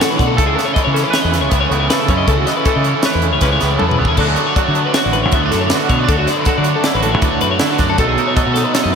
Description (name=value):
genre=math rock and midwest emo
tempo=158 BPM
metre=5/4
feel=straight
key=unclear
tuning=A4 = 442 Hz
part: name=twangy electric guitar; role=accompaniment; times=0.0-8.9 s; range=A2 to B4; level=-20 LUFS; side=right 7 dB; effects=tremolo
part: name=twelve-string electric guitar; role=arpeggios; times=0.0-8.9 s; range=F#4 to E5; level=-19 LUFS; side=left 7 dB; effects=spring reverb, slapback echo
part: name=cranked stack guitar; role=riff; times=0.0-8.9 s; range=B2 to F#4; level=-19 LUFS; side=equal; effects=overdrive, slapback echo
part: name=crisp fusion drum kit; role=drums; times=0.0-8.8 s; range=crash cymbal, hi-hat, kick drum, snare drum, toms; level=-19 LUFS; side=equal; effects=none
part: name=growling fingered electric bass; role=bass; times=0.2-8.9 s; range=A1 to D3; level=-19 LUFS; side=equal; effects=overdrive
room=moderate scoring stage reverb, RT60 2.0 s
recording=big arena sound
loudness=-12 LUFS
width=side -6 dB against mid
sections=0.0-8.9 A section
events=drum fill 3.8-4.2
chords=0.4 Aadd9/C#; 4.2 Dmaj7; 8.0 B7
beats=0.00 | 0.38 0.76 1.14 1.52 1.90 | 2.28 2.67 3.05 3.43 3.81 | 4.19 4.57 4.95 5.33 5.71 | 6.09 6.47 6.85 7.23 7.62 | 8.00 8.38 8.76